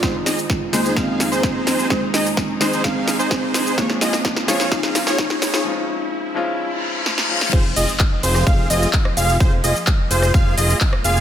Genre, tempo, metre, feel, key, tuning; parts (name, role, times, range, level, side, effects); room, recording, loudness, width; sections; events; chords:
EDM, festival progressive house; 128 BPM; 4/4; straight; F minor; A4 = 435 Hz
kalimba; melody; 0.0-5.6 s; Ab3 to Eb4; -25 LUFS; right 1 dB; tape echo
warm grand piano; accompaniment; 0.0-7.6 s; Eb3 to F4; -26 LUFS; left 3 dB; sidechain pumping, tape echo
warm studio string section; sustained chords; 0.0-11.2 s; F2 to Ab4; -32 LUFS; equal; sidechain pumping
plucky unison lead; arpeggios; 0.0-11.2 s; C5 to F5; -25 LUFS; equal; sidechain pumping, tape echo
dense compressed supersaw; riff; 0.0-11.2 s; Eb4 to F5; -24 LUFS; right 1 dB; sidechain pumping, low-pass filter, tape echo
big-room dance drum kit; drums; 0.0-11.2 s; crash cymbal, handclaps, hi-hat, ride cymbal, rim click, shaker, snare drum; -22 LUFS; equal
electronic kick drum; drums; 0.0-10.9 s; -19 LUFS; equal
riser, reverse cymbal and impact; sound effects; 0.0-9.4 s; -28 LUFS; left 1 dB
fat analog bass; bass; 7.5-11.2 s; F1; -20 LUFS; equal; sidechain pumping
light reverb, digital ambience; high-pass filter; -16 LUFS; side -10 dB against mid
0.0-7.5 A section; 7.5-11.2 B section
build-up 0.0-7.5; drum fill 0.0-5.7, 7.1-7.5; riser 0.0-7.5; break 5.7-7.5; reverse cymbal 6.6-7.5; drop 7.5-11.2; impact 7.5-9.4
0.0 Ab/F; 3.8 Db/F; 7.5 Fm